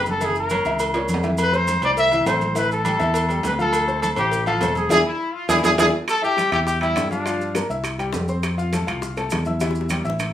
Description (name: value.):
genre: latin, salsa.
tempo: 204 BPM.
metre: 4/4.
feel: straight.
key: unclear.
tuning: A4 = 440 Hz.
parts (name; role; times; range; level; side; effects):
bright upright piano; accompaniment; 0.0-10.3 s; E3 to F6; -25 LUFS; left 2 dB; none.
fingered electric bass; bass; 0.0-10.3 s; E1 to G2; -26 LUFS; equal; none.
mellow trumpet; melody; 0.1-7.7 s; D4 to E5; -21 LUFS; equal; none.
congas; percussion; 0.1-10.3 s; none; -31 LUFS; left 1 dB; none.
cowbell and bongos; percussion; 0.1-10.3 s; none; -32 LUFS; left 5 dB; none.
maracas; percussion; 0.1-10.3 s; none; -37 LUFS; right 3 dB; none.
agogo bells and timbales; percussion; 0.2-10.3 s; none; -26 LUFS; right 2 dB; none.
brilliant trombone section; second line; 5.0-6.1 s; B3 to F4; -28 LUFS; left 3 dB; none.
room: moderate studio reverb, RT60 0.6 s.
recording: rough home demo mix, small room ambience.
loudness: -18 LUFS.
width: side -11 dB against mid.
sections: 0.0-6.1 A section; 6.1-10.3 B section.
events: drum fill 1.0-1.4, 4.9-6.1, 9.6-10.3; band accent 4.9-6.1.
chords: 0.2 F#7; 1.4 Fmaj7; 2.6 A5; 3.7 Dm7; 4.9 E7; 6.1 Em; 7.3 Gm7; 7.9 C; 8.4 Fmaj7; 9.6 Emadd11.